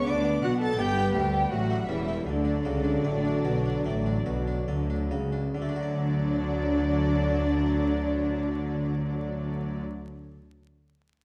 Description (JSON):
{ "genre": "classical, baroque-style concerto movement with solo episodes", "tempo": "69-85 BPM", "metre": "4/4", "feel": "straight", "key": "D major", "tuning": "A4 = 438 Hz", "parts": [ { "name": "warm cello", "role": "melody", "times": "0.0-9.8 s", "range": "D3 to A4", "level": "-33 LUFS", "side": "equal", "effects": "none" }, { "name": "warm studio violin section", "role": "melody", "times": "0.0-9.8 s", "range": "D5 to A6", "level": "-39 LUFS", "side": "equal", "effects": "none" }, { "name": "rich chamber violin section", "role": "second line", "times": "0.0-9.8 s", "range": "D4 to A5", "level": "-36 LUFS", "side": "equal", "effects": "none" }, { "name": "harpsichord", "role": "accompaniment", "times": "0.0-10.4 s", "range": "D2 to D5", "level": "-37 LUFS", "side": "equal", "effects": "none" }, { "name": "rich chamber viola section", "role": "accompaniment", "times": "0.0-9.8 s", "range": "F#3 to B3", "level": "-38 LUFS", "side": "equal", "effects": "none" }, { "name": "rich chamber cello section", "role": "bass", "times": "0.0-9.8 s", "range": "D2 to D3", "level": "-34 LUFS", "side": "equal", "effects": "none" }, { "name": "rich symphonic double bass section", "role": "bass", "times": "0.0-9.8 s", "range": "E1 to D2", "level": "-34 LUFS", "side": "equal", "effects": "none" } ], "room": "wet recital hall reverb, RT60 1.3 s", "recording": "dark, warm production, vinyl crackle", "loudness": "-27 LUFS", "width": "mono", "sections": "0.0-5.6 A section; 5.6-9.1 B section", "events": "slowing down 0.0-5.6", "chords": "0.0 Bm; 0.8 G; 1.5 A7; 2.3 D", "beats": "0.07 0.79 1.52 | 2.28 3.06 3.87 4.70 | 5.56 6.43 7.30 8.18" }